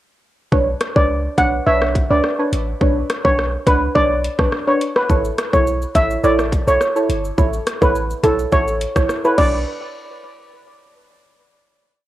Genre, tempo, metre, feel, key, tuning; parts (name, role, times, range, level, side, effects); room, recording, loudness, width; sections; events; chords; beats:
dancehall; 105 BPM; 4/4; straight; B minor; A4 = 438 Hz
deep mellow chord stab; accompaniment; 0.5-9.6 s; D4 to C#5; -21 LUFS; right 2 dB; chorus, sidechain pumping, cassette tape
warm 808-style bass; bass; 0.5-9.6 s; G1 to C#2; -23 LUFS; equal
island pop drum kit; drums; 0.5-9.5 s; crash cymbal, hi-hat, kick drum, rim click, shaker; -20 LUFS; equal; cassette tape
steel pan; melody; 1.0-9.6 s; A4 to F#5; -18 LUFS; equal; tape echo
light reverb, digital ambience; home recording on cassette; -15 LUFS; side -14 dB against mid
0.5-9.7 verse; 9.7-12.0 final hit
0.5 Bmadd9; 5.1 A; 9.4 Bmadd9; 9.7 N.C.
| 0.52 1.09 1.67 2.24 | 2.81 3.38 3.95 4.52 | 5.09 5.67 6.24 6.81 | 7.38 7.95 8.52 9.10